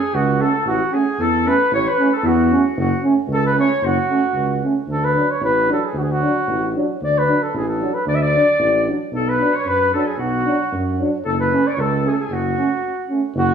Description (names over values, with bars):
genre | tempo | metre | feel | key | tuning
balkan folk | 113 BPM | 2/4 | straight | unclear | A4 = 440 Hz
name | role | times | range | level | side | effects
mellow flugelhorn | melody | 0.0-13.5 s | F#4 to E5 | -20 LUFS | equal | none
bright clarinet | second line | 0.0-4.6, 8.1-13.1 s | F#4 to E5 | -25 LUFS | left 4 dB | none
mellow tuba | bass | 0.1-13.5 s | F#1 to F#2 | -21 LUFS | equal | none
clear euphonium | accompaniment | 0.4-13.2 s | C#4 to D4 | -22 LUFS | right 2 dB | none
warm euphonium | accompaniment | 0.4-13.2 s | F#3 to A3 | -31 LUFS | right 3 dB | none
room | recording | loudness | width
wet stone room reverb, RT60 1.2 s | band playing live in one room | -16 LUFS | side -7 dB against mid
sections
0.0-4.9 A section; 4.9-13.4 B section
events
break 12.8-13.4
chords
0.0 F#m; 0.7 A; 2.8 F#m; 4.9 D; 9.1 Bm; 11.3 F#m